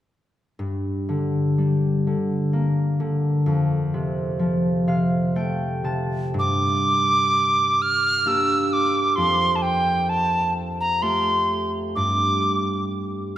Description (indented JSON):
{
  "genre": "celtic folk, Celtic slow air",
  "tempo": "64 BPM",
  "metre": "3/4",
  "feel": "rubato",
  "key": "G minor",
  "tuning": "A4 = 440 Hz",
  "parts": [
    { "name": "concert harp", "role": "accompaniment", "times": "0.6-13.4 s", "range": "F2 to A5", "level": "-22 LUFS", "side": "left 1 dB", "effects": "none" },
    { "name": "tin whistle", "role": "melody", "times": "6.4-12.9 s", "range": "G5 to F6", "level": "-20 LUFS", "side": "right 1 dB", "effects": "none" }
  ],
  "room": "wet concert hall reverb, RT60 2.4 s",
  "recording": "recorded in a church or concert hall",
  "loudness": "-19 LUFS",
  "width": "side -12 dB against mid",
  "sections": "0.6-6.3 A section; 6.3-13.4 B section",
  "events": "harp fill 4.4-6.3",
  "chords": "0.6 Gm; 3.5 F; 6.3 Gm; 9.2 Fadd9; 12.0 Gsus2"
}